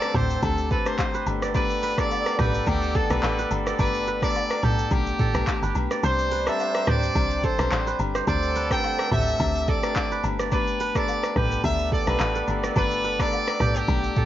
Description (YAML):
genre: afrobeats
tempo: 107 BPM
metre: 4/4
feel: swing 55% on 16ths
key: G major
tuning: A4 = 439 Hz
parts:
  - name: brilliant trumpet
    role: melody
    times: 0.0-14.3 s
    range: G4 to G5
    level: -27 LUFS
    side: equal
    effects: plate reverb
  - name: warm horn section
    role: second line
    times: 0.0-14.3 s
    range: D3 to D5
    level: -33 LUFS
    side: right 1 dB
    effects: cassette tape, tape echo, plate reverb
  - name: glass harmonica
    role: sustained chords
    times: 0.0-14.3 s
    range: B4 to E6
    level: -38 LUFS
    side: right 2 dB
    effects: sidechain pumping, cassette tape, plate reverb
  - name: kora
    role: riff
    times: 0.0-14.3 s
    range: G4 to D5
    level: -32 LUFS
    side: right 9 dB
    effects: cassette tape, tape echo
  - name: afro-pop drum kit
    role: drums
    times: 0.0-14.3 s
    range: handclaps, hi-hat, kick drum, rim click, shaker, toms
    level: -26 LUFS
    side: equal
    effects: overdrive, cassette tape
  - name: agogo bells and woodblock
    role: percussion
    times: 0.0-14.0 s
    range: none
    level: -36 LUFS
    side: left 11 dB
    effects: none
  - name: downlifter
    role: sound effects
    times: 0.0-1.5 s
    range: none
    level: barely audible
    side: none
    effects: none
  - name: marimba with medium mallets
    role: accompaniment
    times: 0.1-14.3 s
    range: G3 to G4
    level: -32 LUFS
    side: left 10 dB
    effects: cassette tape
  - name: woody log drum bass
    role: bass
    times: 0.1-14.1 s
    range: G1 to D2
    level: -27 LUFS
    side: equal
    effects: none
room: light reverb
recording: home recording on cassette, nothing above 7.5 kHz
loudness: -21 LUFS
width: side -12 dB against mid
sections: 0.0-14.3 A section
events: kick muted 6.0-7.2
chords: 0.0 D7sus4; 1.3 Gadd9; 6.0 Csus2; 8.3 D7sus4; 10.2 Gadd9